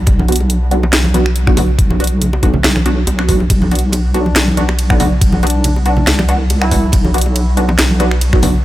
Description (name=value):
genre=deep dubstep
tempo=140 BPM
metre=4/4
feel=swing 54% on 16ths, half-time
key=B phrygian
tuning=A4 = 440 Hz
part: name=deep soft wobble bass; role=bass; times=0.0-8.6 s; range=B1 to C2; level=-14 LUFS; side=equal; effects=chorus
part: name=electronic kick drum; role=drums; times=0.1-8.4 s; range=none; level=-14 LUFS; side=equal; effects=none
part: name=garage drum kit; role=drums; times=0.1-8.5 s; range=finger snaps, hi-hat, ride cymbal, snare drum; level=-18 LUFS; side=equal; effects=none
part: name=bongos and congas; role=percussion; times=0.1-8.5 s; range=none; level=-21 LUFS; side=right 1 dB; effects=none
part: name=filtered dub chord stab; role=stabs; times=0.3-8.5 s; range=B3 to F#4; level=-20 LUFS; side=equal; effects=phaser, lush chorus, dub echo
part: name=mellow duduk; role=melody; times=4.1-6.9 s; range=D4 to E4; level=-26 LUFS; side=left 1 dB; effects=dub echo
room=little or no reverb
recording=none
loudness=-11 LUFS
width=side -15 dB against mid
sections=0.0-8.6 A section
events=none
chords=0.0 Bm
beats=| 0.07 0.50 0.93 1.36 | 1.79 2.21 2.64 3.07 | 3.50 3.93 4.36 4.79 | 5.21 5.64 6.07 6.50 | 6.93 7.36 7.79 8.21